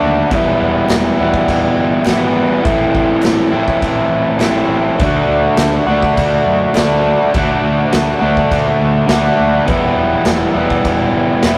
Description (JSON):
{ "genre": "garage rock duo or trio", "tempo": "102 BPM", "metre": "4/4", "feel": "straight", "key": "E minor", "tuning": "A4 = 440 Hz", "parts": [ { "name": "crunchy overdriven guitar", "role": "riff", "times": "0.0-11.6 s", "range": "E2 to F#4", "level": "-15 LUFS", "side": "equal", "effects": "none" }, { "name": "fuzz picked electric bass", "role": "bass", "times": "0.0-11.6 s", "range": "E1 to F#2", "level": "-24 LUFS", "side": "equal", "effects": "overdrive" }, { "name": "raw garage drum kit", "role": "drums", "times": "0.3-11.6 s", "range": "crash cymbal, kick drum, snare drum", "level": "-22 LUFS", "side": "equal", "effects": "none" }, { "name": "group handclap", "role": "percussion", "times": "0.9-11.6 s", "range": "none", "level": "-34 LUFS", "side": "equal", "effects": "none" } ], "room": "moderate stone room reverb, RT60 1.3 s", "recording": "rough rehearsal-room recording, tube saturation", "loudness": "-14 LUFS", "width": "mono", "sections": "0.0-11.6 A section", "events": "none", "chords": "0.3 Em; 2.7 Am; 5.0 D; 9.7 Em" }